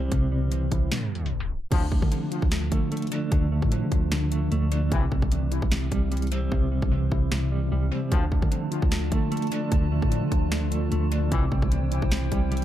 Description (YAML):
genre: hip hop, trap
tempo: 150 BPM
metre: 4/4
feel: half-time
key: D minor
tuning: A4 = 445 Hz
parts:
  - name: mellow tine electric piano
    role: accompaniment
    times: 0.0-12.6 s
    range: C3 to F4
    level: -30 LUFS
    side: equal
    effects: medium stereo tremolo, tape echo
  - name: mellow electric guitar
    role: arpeggios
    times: 0.0-12.6 s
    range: C3 to D4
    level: -29 LUFS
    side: right 2 dB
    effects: tremolo, tape echo
  - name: long sustained 808-style bass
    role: bass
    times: 0.0-12.6 s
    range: C2 to D3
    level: -27 LUFS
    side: equal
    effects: none
  - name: trap drum kit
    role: drums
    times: 0.1-12.6 s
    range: crash cymbal, hi-hat, kick drum, snare drum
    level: -26 LUFS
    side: equal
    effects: none
  - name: mellow brass ensemble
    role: stabs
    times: 1.7-1.8, 4.9-5.0, 8.1-8.2, 11.3-11.4 s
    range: C2 to F3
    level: -37 LUFS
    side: left 6 dB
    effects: tape echo
  - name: warbly tape-like pad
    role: sustained chords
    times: 8.1-12.6 s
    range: E4 to A5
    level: -35 LUFS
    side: left 2 dB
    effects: chorus, built-in reverb
room: little or no reverb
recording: echo-heavy mix, tape stop, lossy compression artefacts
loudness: -22 LUFS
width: side -12 dB against mid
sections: 0.0-1.7 A section; 1.7-12.6 B section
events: break 0.9-1.7; tape stop 0.9-1.7; hi-hats muted 6.5-8.1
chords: 0.0 C; 1.7 Dm; 4.9 C; 8.1 Dm; 11.3 C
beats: | 0.12 0.52 0.92 1.32 | 1.72 2.12 2.52 2.92 | 3.32 3.72 4.12 4.52 | 4.92 5.32 5.72 6.12 | 6.52 6.92 7.32 7.72 | 8.12 8.52 8.92 9.32 | 9.72 10.12 10.52 10.92 | 11.32 11.72 12.12 12.52